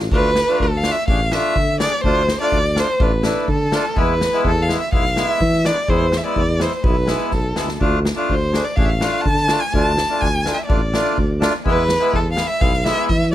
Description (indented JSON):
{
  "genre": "klezmer",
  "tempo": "125 BPM",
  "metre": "4/4",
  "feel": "straight",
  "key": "D dorian sharp4",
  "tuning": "A4 = 440 Hz",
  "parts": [
    { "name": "mellow tuba", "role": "bass", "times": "0.0-13.3 s", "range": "A1 to E3", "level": "-21 LUFS", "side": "equal", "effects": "none" },
    { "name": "rich violin", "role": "melody", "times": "0.1-13.3 s", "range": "A4 to A5", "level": "-20 LUFS", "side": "equal", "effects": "none" },
    { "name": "accordion", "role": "accompaniment", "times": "0.1-13.1 s", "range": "G#3 to G#4", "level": "-23 LUFS", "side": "left 1 dB", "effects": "none" },
    { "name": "street-band drum kit", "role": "drums", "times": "0.1-13.3 s", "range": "kick drum, snare drum", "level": "-22 LUFS", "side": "equal", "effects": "none" }
  ],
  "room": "light reverb",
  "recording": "close, detailed microphones",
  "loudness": "-16 LUFS",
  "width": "side -13 dB against mid",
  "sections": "0.1-13.3 A section",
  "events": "none",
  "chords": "0.1 Dm; 4.0 E; 7.8 Dm; 11.7 E",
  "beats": "| 0.12 0.60 1.08 1.56 | 2.04 2.52 3.00 3.48 | 3.97 4.45 4.93 5.41 | 5.89 6.37 6.85 7.33 | 7.82 8.30 8.78 9.26 | 9.74 10.22 10.70 11.18 | 11.66 12.14 12.62 13.10"
}